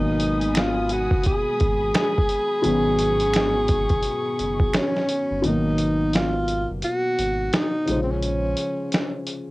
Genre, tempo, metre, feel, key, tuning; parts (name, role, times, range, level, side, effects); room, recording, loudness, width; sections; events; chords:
lo-fi hip hop; 86 BPM; 4/4; swing 60% on 16ths; G# dorian; A4 = 440 Hz
mellow tenor saxophone; melody; 0.0-9.2 s; B#3 to G#4; -23 LUFS; equal; low-pass filter, cassette tape
felt-muted upright piano; accompaniment; 0.0-9.5 s; B2 to B#4; -27 LUFS; left 1 dB; low-pass filter
muted studio string section; sustained chords; 0.0-5.4 s; G#3 to D#6; -34 LUFS; left 1 dB; low-pass filter
sub bass with octave; bass; 0.0-8.5 s; F#1 to A#1; -28 LUFS; equal
dusty soul sampler-style drum kit; drums; 0.2-9.5 s; hi-hat, kick drum, snare drum; -24 LUFS; equal; cassette tape
finger snap; percussion; 0.5-4.9 s; -31 LUFS; right 4 dB
moderate booth ambience, RT60 0.2 s; home recording on cassette; -20 LUFS; side -20 dB against mid
0.0-5.4 A section; 5.4-9.5 B section
kick muted 5.4-9.5
0.0 G#m7; 7.9 A#m7